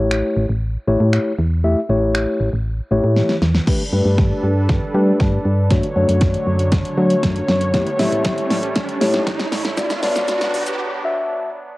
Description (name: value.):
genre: dance-pop.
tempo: 118 BPM.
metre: 4/4.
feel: straight.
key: unclear.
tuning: A4 = 438 Hz.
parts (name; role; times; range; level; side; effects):
mellow tine electric piano; accompaniment; 0.0-11.5 s; A3 to E5; -20 LUFS; left 2 dB; sidechain pumping, cassette tape.
solid FM bass; bass; 0.0-10.7 s; A1 to G3; -19 LUFS; equal; sidechain pumping.
pop drum kit; drums; 0.1-10.8 s; crash cymbal, finger snaps, hi-hat, kick drum, shaker, snare drum; -20 LUFS; equal; overdrive, cassette tape.
warm analog pad; sustained chords; 3.7-11.8 s; D3 to C#5; -24 LUFS; right 1 dB; lush chorus, sidechain pumping, cassette tape.
riser; sound effects; 6.3-10.8 s; none; -29 LUFS; right 2 dB; none.
room: digital ambience.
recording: home recording on cassette, high-pass filter.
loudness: -16 LUFS.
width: side -19 dB against mid.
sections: 0.0-3.7 A section; 3.7-11.8 B section.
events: drum fill 3.2-3.7, 3.7-10.8; build-up 3.7-11.8; filter sweep 3.7-11.8; riser 6.3-11.8; break 10.8-11.8.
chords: 0.0 A7; 3.7 Gadd9; 5.7 Dmaj7/F#; 7.7 A7; 9.8 Bm.